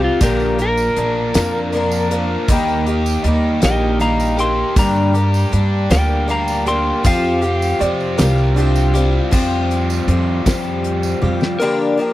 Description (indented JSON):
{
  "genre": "folk rock and heartland rock",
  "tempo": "53 BPM (dotted quarters)",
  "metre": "6/8",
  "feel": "straight",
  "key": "unclear",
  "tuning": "A4 = 440 Hz",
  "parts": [
    { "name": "electric slide guitar", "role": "melody", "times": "0.0-7.8, 11.6-12.1 s", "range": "F4 to C6", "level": "-20 LUFS", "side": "left 1 dB", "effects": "none" },
    { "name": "picked twelve-string acoustic guitar", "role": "accompaniment", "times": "0.0-12.1 s", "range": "G2 to Bb4", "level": "-21 LUFS", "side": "left 3 dB", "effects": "none" },
    { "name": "biting overdriven guitar", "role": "riff", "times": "0.0-11.6 s", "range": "G2 to Bb4", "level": "-22 LUFS", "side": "right 1 dB", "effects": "none" },
    { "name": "upright bass", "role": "bass", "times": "0.0-11.6 s", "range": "Bb1 to G2", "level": "-18 LUFS", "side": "equal", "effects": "none" },
    { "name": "damped 70s drum kit", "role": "drums", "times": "0.2-11.6 s", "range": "crash cymbal, hi-hat, kick drum, snare drum, toms", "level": "-17 LUFS", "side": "equal", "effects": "none" },
    { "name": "tambourine", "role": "percussion", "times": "0.2-11.5 s", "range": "none", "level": "-34 LUFS", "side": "right 8 dB", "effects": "none" },
    { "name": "clear upright piano", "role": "second line", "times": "7.8-9.1 s", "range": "D4 to D5", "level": "-23 LUFS", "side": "right 4 dB", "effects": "none" }
  ],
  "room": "little or no reverb",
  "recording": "dry, close 1970s-style studio recording",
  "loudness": "-14 LUFS",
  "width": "side -15 dB against mid",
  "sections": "0.0-9.3 A section; 9.3-11.6 B section",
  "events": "electric slide guitar solo 0.0-9.3; drum fill 11.2-11.6",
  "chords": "0.2 Bb; 2.5 Eb; 4.8 Gm; 7.0 Fsus2; 11.6 Gm7"
}